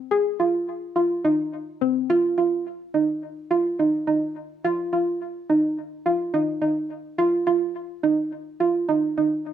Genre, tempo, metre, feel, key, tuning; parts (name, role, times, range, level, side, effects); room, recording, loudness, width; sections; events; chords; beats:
progressive instrumental, progressive; 212 BPM (eighths); 9/8; straight; A4 = 435 Hz
soft round pluck; solo; 0.1-9.5 s; C4 to Ab4; -21 LUFS; right 2 dB; chorus, ping-pong delay
wet studio reverb, RT60 0.6 s; -21 LUFS; side -10 dB against mid
0.0-2.1 A section; 2.1-9.5 B section
0.12 0.40 0.68 0.97 1.25 1.53 1.82 | 2.10 2.38 2.66 2.95 3.23 3.51 3.80 4.08 4.36 | 4.64 4.93 5.21 5.49 5.78 6.06 6.34 6.62 6.91 | 7.19 7.47 7.76 8.04 8.32 8.60 8.89 9.17 9.45